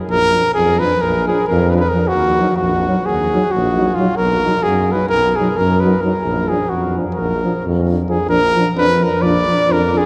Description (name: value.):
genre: balkan folk, Balkan brass band.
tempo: 263 BPM (eighths).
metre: 9/8.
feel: straight.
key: Bb phrygian dominant.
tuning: A4 = 440 Hz.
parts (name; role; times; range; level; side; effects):
mellow trumpet; melody; 0.1-10.1 s; F4 to D5; -18 LUFS; equal; none.
mellow tuba; bass; 0.1-10.0 s; Bb1 to F#2; -22 LUFS; equal; none.
mellow French horn; accompaniment; 0.3-10.0 s; D4 to D#4; -28 LUFS; equal; none.
mellow euphonium; accompaniment; 0.3-10.0 s; F3 to Gb3; -25 LUFS; equal; none.
room: wet cathedral reverb, RT60 7.7 s.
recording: recorded in a church or concert hall.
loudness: -16 LUFS.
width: mono.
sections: 0.0-8.3 A section; 8.3-10.1 B section.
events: none.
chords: 0.1 Bb; 2.1 Ebm; 4.2 B; 6.2 Bb.